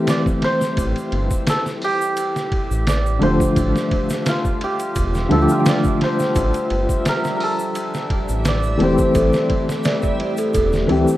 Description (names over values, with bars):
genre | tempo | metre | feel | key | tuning
trip hop | 86 BPM | 4/4 | swing 54% on 16ths | A minor | A4 = 435 Hz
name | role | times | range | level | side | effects
santur | melody | 0.0-11.2 s | F4 to D5 | -23 LUFS | equal | tape echo
dark upright piano | accompaniment | 0.0-11.2 s | D3 to G4 | -21 LUFS | left 1 dB | tremolo
backwards swelling texture | texture | 0.2-11.2 s | G3 to E5 | -30 LUFS | right 1 dB | built-in reverb
trip hop sampler-style drum kit | drums | 0.1-11.1 s | hi-hat, kick drum, ride cymbal, snare drum | -23 LUFS | equal | studio reverb
tube shaker | percussion | 0.1-11.2 s | none | -39 LUFS | left 2 dB | none
dark detuned saw bass | bass | 0.8-11.1 s | E1 to D2 | -21 LUFS | equal | none
dark analog pad | sustained chords | 9.9-11.2 s | A3 to C5 | -28 LUFS | left 1 dB | chorus
celesta | arpeggios | 9.2-11.2 s | A4 to E5 | -23 LUFS | right 2 dB | tape echo
room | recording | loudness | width
small room ambience | rough home demo mix | -16 LUFS | side -15 dB against mid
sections
0.0-11.2 A section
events
none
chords
0.0 Am7